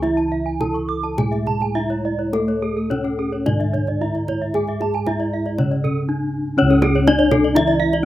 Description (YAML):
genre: Balinese gamelan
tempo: 104-123 BPM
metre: 4/4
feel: straight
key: C# pelog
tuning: A4 = 439 Hz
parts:
  - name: gamelan-type bronze metallophone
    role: melody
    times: 0.0-8.0 s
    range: A3 to A4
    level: -22 LUFS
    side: left 1 dB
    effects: none
  - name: gamelan-type bronze metallophone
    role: accompaniment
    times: 0.0-8.1 s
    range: C#3 to A3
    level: -27 LUFS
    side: right 2 dB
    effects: none
  - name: gamelan-type bronze metallophone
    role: arpeggios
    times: 0.0-8.1 s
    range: A4 to C#6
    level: -25 LUFS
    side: left 5 dB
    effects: slapback echo
  - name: gamelan-type bossed gongs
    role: bass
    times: 0.0-8.1 s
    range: C#2 to A4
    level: -23 LUFS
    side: equal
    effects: none
  - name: kendang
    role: percussion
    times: 0.0-8.0 s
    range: none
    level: -26 LUFS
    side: equal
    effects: none
  - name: gamelan-type bronze metallophone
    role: arpeggios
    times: 0.3-7.9 s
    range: G#4 to D6+35c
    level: -25 LUFS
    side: right 6 dB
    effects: slapback echo
room: little or no reverb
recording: recorded outdoors, with no room sound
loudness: -17 LUFS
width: side -14 dB against mid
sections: 0.0-6.6 A section; 6.6-8.1 B section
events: none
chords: none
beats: | 0.03 0.61 1.19 1.76 | 2.34 2.91 3.47 4.01 | 4.55 5.07 5.59 6.09 | 6.58 7.07 7.56 8.05